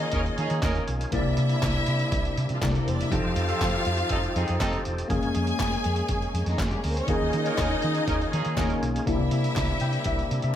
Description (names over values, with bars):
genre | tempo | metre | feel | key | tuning
disco | 121 BPM | 4/4 | straight | unclear | A4 = 440 Hz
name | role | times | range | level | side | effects
clear studio string section | second line | 0.0-10.6 s | Eb3 to Ab5 | -30 LUFS | left 1 dB | none
tine electric piano | accompaniment | 0.0-10.6 s | C3 to G5 | -30 LUFS | left 3 dB | phaser
percussive tonewheel organ | sustained chords | 0.0-10.6 s | C3 to A4 | -33 LUFS | equal | overdrive, fast rotary speaker
hollow-body short-scale fingered electric bass | bass | 0.0-10.5 s | E1 to Eb3 | -28 LUFS | equal | none
clear horn section | stabs | 0.1-8.8 s | C4 to Db5 | -32 LUFS | right 2 dB | none
trip hop sampler-style drum kit | drums | 0.1-10.5 s | handclaps, hi-hat, kick drum, snare drum | -31 LUFS | right 1 dB | none
group handclap | percussion | 0.6-9.7 s | none | -40 LUFS | left 4 dB | none
room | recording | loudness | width
moderate large studio reverb, RT60 0.8 s | none | -23 LUFS | side -10 dB against mid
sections
0.0-10.6 A section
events
tine electric piano fill 9.6-10.6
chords
0.0 Eb7sus4; 1.1 C9; 3.1 F9; 5.1 Bbm7/F; 7.1 Eb7sus4; 9.1 C9